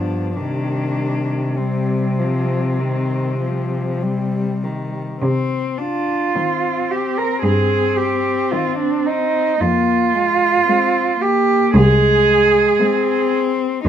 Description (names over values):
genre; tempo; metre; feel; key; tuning
classical, lyrical piece for cello ensemble; 49-58 BPM; 4/4; rubato; C minor; A4 = 441 Hz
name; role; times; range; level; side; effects
muted cello; melody; 0.0-13.9 s; Ab3 to Eb4; -23 LUFS; left 7 dB; none
muted cello; second line; 0.0-13.9 s; G3 to C5; -18 LUFS; right 4 dB; none
muted cello; accompaniment; 0.0-13.6 s; Eb3 to Ab3; -25 LUFS; left 3 dB; none
muted cello; bass; 0.0-13.9 s; C2 to C3; -20 LUFS; equal; none
room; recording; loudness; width
moderate studio reverb, RT60 0.7 s; none; -15 LUFS; side -9 dB against mid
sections
0.0-5.2 A section; 5.2-13.9 B section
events
none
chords
0.4 Cm; 9.6 Fm